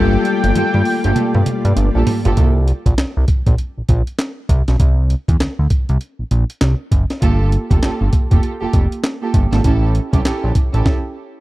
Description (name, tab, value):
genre	R&B, new jack swing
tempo	99 BPM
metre	4/4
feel	swing 61% on 16ths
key	unclear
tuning	A4 = 440 Hz
part	octave-doubled lead	melody	0.0-1.8 s	G5	-22 LUFS	equal	chorus, tape echo
part	bell-like tine electric piano	accompaniment	0.0-2.4 s	G3 to A4	-20 LUFS	left 7 dB	none
part	lush unison pad	sustained chords	0.0-2.3 s	G3 to D5	-28 LUFS	right 1 dB	chorus
part	muted studio string section	stabs	0.0-2.4, 7.2-10.9 s	Bb3 to A4	-22 LUFS	right 4 dB	none
part	fat analog bass	bass	0.0-10.8 s	F1 to G2	-15 LUFS	equal	none
part	breakbeat sampler-style drum kit	drums	0.1-11.0 s	handclaps, hi-hat, kick drum, snare drum, toms	-16 LUFS	equal	none
room	digital ambience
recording	dry, close 1970s-style studio recording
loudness	-14 LUFS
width	side -18 dB against mid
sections	0.0-2.4 A section; 2.4-11.4 B section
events	drum fill 0.0-2.4; stop 10.9-11.4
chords	0.0 Gm9; 2.4 C7(no3); 7.2 Gm9; 9.6 A7